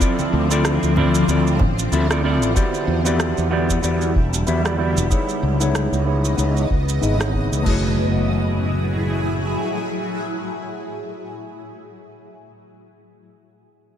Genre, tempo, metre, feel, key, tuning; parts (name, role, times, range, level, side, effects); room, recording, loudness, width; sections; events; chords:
sunset chillout; 94 BPM; 4/4; swing 56% on 16ths; F# minor; A4 = 440 Hz
semi-hollow electric guitar; accompaniment; 0.0-11.7 s; A3 to E5; -23 LUFS; equal; auto-pan, low-pass filter, tape echo
shimmering ambient pad; sustained chords; 0.0-11.0 s; A2 to D#5; -25 LUFS; left 1 dB; chorus, built-in reverb, phaser
deep house drum kit; drums; 0.0-7.8 s; crash cymbal, rim click, shaker; -28 LUFS; right 3 dB
electronic kick drum; drums; 0.0-7.8 s; -21 LUFS; equal; overdrive
downlifter and impact; sound effects; 0.0-2.6, 7.7-11.7 s; -34 LUFS; equal
congas; percussion; 0.2-1.7 s; -26 LUFS; right 2 dB
fretless electric bass; bass; 0.3-9.5 s; E1 to E2; -20 LUFS; equal; ensemble chorus
light reverb, digital ambience; -17 LUFS; side -9 dB against mid
0.0-7.7 A section; 7.7-10.2 B section
filter sweep on clean electric guitar 0.0-7.7
0.0 Dm9; 2.6 Em9; 5.1 C#m9; 7.7 F#m9